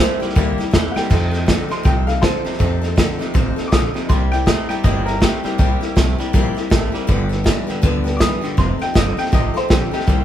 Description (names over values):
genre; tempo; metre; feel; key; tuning
rockabilly; 161 BPM; 4/4; swing 61% on 8ths; C mixolydian; A4 = 436 Hz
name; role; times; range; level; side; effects
bright upright piano; melody; 0.0-10.2 s; E4 to Eb6; -24 LUFS; left 1 dB; none
picked old ladder-braced acoustic guitar; accompaniment; 0.0-10.2 s; G2 to A4; -26 LUFS; left 5 dB; none
twangy electric guitar; riff; 0.0-10.2 s; F2 to A3; -24 LUFS; right 2 dB; none
upright bass; bass; 0.0-10.2 s; F1 to F2; -21 LUFS; equal; none
vintage drum kit; drums; 0.2-10.2 s; crash cymbal, hi-hat, kick drum, snare drum; -18 LUFS; equal; none
room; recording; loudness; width
light reverb; band playing live in one room; -15 LUFS; side -11 dB against mid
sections
0.0-10.2 A section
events
upright piano solo 0.0-10.2; drum fill 0.9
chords
0.0 C7; 1.1 F7; 4.1 C7; 7.1 G7; 8.6 F7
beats
0.36 0.74 | 1.11 1.48 1.86 2.23 | 2.60 2.98 3.35 3.72 | 4.10 4.47 4.84 5.22 | 5.59 5.96 6.34 6.71 | 7.08 7.46 7.83 8.21 | 8.58 8.95 9.33 9.70 | 10.08